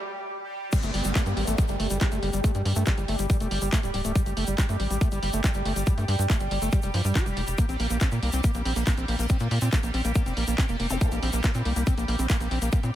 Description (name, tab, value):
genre	psychedelic trance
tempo	140 BPM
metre	4/4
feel	straight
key	G minor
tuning	A4 = 440 Hz
part	bubbling stepped-filter texture	sustained chords	0.0-12.9 s	G3 to G4	-34 LUFS	right 1 dB	chorus, built-in reverb, sidechain pumping
part	screaming distorted acid line	riff	0.7-12.9 s	F3 to G4	-31 LUFS	moving between left 4 dB and right 3 dB	distortion, chorus, auto-pan, cassette tape, sidechain pumping, digital delay
part	electronic kick drum	drums	0.7-12.8 s	none	-23 LUFS	equal	none
part	garage drum kit	drums	0.7-12.9 s	crash cymbal, handclaps, hi-hat	-33 LUFS	equal	none
part	egg shaker	percussion	0.7-12.9 s	none	-38 LUFS	left 4 dB	none
part	downlifter and zap	sound effects	0.7-4.2, 10.9-11.0 s	none	-37 LUFS	equal	none
part	tight sequencer bass	bass	0.8-12.9 s	D1 to Bb2	-27 LUFS	equal	none
room	digital ambience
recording	high-pass filter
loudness	-23 LUFS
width	side -12 dB against mid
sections	0.7-12.9 A section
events	break 0.0-0.7; drop 0.7-12.9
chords	0.0 N.C.; 0.7 G5; 7.6 Bb5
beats	0.30 | 0.73 1.15 1.58 2.01 | 2.44 2.87 3.30 3.73 | 4.15 4.58 5.01 5.44 | 5.87 6.30 6.73 7.15 | 7.58 8.01 8.44 8.87 | 9.30 9.73 10.15 10.58 | 11.01 11.44 11.87 12.30 | 12.73